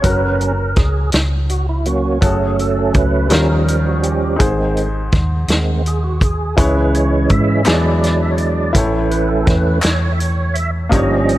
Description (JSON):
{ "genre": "slow gospel", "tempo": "55 BPM (dotted quarters)", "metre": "6/8", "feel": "straight", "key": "unclear", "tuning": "A4 = 441 Hz", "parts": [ { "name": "clear upright piano", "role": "accompaniment", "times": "0.0-11.4 s", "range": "G2 to D5", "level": "-21 LUFS", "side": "left 2 dB", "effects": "none" }, { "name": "tonewheel organ", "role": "sustained chords", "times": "0.0-11.4 s", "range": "D#3 to E5", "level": "-18 LUFS", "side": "right 3 dB", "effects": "slow rotary speaker, overdrive, chorus vibrato" }, { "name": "hollow-body short-scale fingered electric bass", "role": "bass", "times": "0.0-11.4 s", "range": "F#1 to G#2", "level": "-18 LUFS", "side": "equal", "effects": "none" }, { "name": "warm soul drum kit", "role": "drums", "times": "0.0-11.4 s", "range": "hi-hat, kick drum, snare drum", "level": "-17 LUFS", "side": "equal", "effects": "none" }, { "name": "group handclap", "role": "percussion", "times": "7.7-10.2 s", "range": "none", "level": "-26 LUFS", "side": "left 2 dB", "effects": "none" } ], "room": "light reverb, studio reverb", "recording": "lossy compression artefacts", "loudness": "-13 LUFS", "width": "side -15 dB against mid", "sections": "0.0-11.4 A section", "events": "tonewheel organ solo 0.0-11.4", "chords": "0.0 F#; 2.2 F#m; 3.3 D#9; 4.4 G#; 6.6 C#m; 7.7 E7; 8.7 A" }